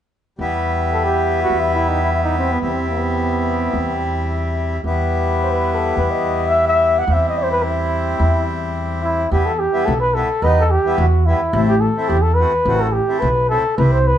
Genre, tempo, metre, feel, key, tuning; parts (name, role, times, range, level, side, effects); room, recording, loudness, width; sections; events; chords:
klezmer; free time; E harmonic minor; A4 = 439 Hz
accordion; accompaniment; 0.4-14.0 s; C3 to F#4; -21 LUFS; left 1 dB
upright bass; bass; 0.4-14.1 s; A1 to E2; -20 LUFS; equal
breathy cornet; melody; 0.9-14.2 s; B3 to F#5; -18 LUFS; equal
moderate studio reverb, RT60 0.7 s; band playing live in one room, nothing above 10.4 kHz; -15 LUFS; side -10 dB against mid
0.4-9.3 A section; 9.3-14.2 B section
0.4 Em; 2.6 C/E; 4.8 Em; 7.1 C/E; 9.3 Em; 11.5 Am